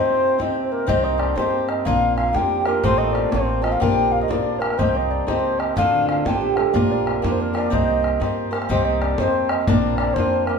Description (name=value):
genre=celtic folk, Celtic polka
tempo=123 BPM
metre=2/4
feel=swing 64% on 8ths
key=C dorian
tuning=A4 = 442 Hz
part: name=mellow baroque flute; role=melody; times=0.0-10.6 s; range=A4 to G5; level=-22 LUFS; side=left 1 dB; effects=none
part: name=cimbalom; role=second line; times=0.0-10.6 s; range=A3 to G4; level=-25 LUFS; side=right 5 dB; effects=none
part: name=fingerpicked swing-style acoustic guitar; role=accompaniment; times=0.0-10.6 s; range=D2 to C5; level=-24 LUFS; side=left 4 dB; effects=none
part: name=hand-pumped harmonium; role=drone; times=0.0-1.0 s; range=C3 to C4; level=-32 LUFS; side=equal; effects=none
part: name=bodhran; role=percussion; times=0.4-10.6 s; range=none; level=-26 LUFS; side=left 1 dB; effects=none
part: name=upright bass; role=bass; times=0.9-10.6 s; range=A1 to G2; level=-27 LUFS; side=right 1 dB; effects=none
room=moderate stone room reverb, RT60 1.1 s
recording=band playing live in one room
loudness=-18 LUFS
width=side -5 dB against mid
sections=0.9-8.7 A section; 8.7-10.6 A section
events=none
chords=0.0 Cm; 1.9 Bb; 2.8 F/A; 3.8 Bb; 4.8 Cm; 5.8 Dm; 6.7 Bb; 7.7 Cm; 9.7 Bb